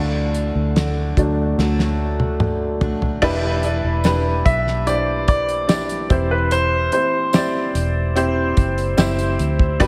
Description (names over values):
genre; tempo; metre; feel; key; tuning
pop ballad; 73 BPM; 4/4; straight; unclear; A4 = 440 Hz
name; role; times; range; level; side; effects
picked steel-string acoustic guitar; arpeggios; 0.0-3.7, 9.8-9.9 s; D3 to F#4; -28 LUFS; equal; slapback echo
vintage muted fingered electric bass; bass; 0.0-9.9 s; E1 to D2; -24 LUFS; equal; none
damped 70s drum kit; drums; 0.3-9.9 s; crash cymbal, hi-hat, kick drum, snare drum, toms; -23 LUFS; equal; none
clear upright piano; accompaniment; 1.2-9.9 s; G2 to D5; -24 LUFS; equal; slapback echo
tambourine; percussion; 4.0-9.2 s; none; -39 LUFS; equal; none
clear concert grand piano; melody; 4.5-8.5 s; B4 to E5; -24 LUFS; equal; slapback echo
room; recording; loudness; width
moderate lush hall reverb, RT60 2.0 s; big arena sound; -19 LUFS; mono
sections
0.0-3.2 A section; 3.2-9.9 B section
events
upright piano solo 0.0-3.2; drum fill 1.6-3.2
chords
0.0 D; 3.2 Em7; 6.1 C/E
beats
0.76 1.58 2.40 | 3.23 4.05 4.87 5.69 | 6.51 7.34 8.16 8.98 | 9.80